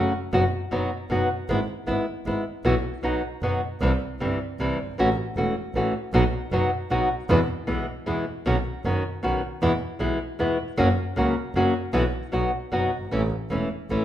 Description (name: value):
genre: tango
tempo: 155 BPM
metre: 3/4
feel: rubato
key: unclear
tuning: A4 = 440 Hz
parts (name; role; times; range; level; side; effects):
- nylon-string guitar; accompaniment; 0.0-14.0 s; B2 to F#4; -24 LUFS; left 1 dB; none
- clear double bass; bass; 0.0-14.0 s; E1 to E2; -27 LUFS; right 1 dB; none
room: wet large studio reverb, RT60 1.2 s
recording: minimal, uncompressed stereo recording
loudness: -22 LUFS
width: side -12 dB against mid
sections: 0.0-14.0 A section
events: none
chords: 0.3 B/F#; 1.5 E/G#; 2.6 Bsus4; 3.0 B; 3.8 C; 5.0 A6; 6.1 B; 7.3 E; 8.5 Badd9; 9.6 E; 10.8 F#; 11.9 Bsus4; 12.3 B; 13.1 A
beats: | 0.34 0.73 1.11 | 1.50 1.88 2.26 | 2.65 3.03 3.42 | 3.82 4.21 4.60 | 4.99 5.37 5.75 | 6.14 6.52 6.91 | 7.30 7.68 8.07 | 8.46 8.85 9.24 | 9.63 10.01 10.40 | 10.79 11.17 11.56 | 11.94 12.33 12.73 | 13.12 13.51 13.90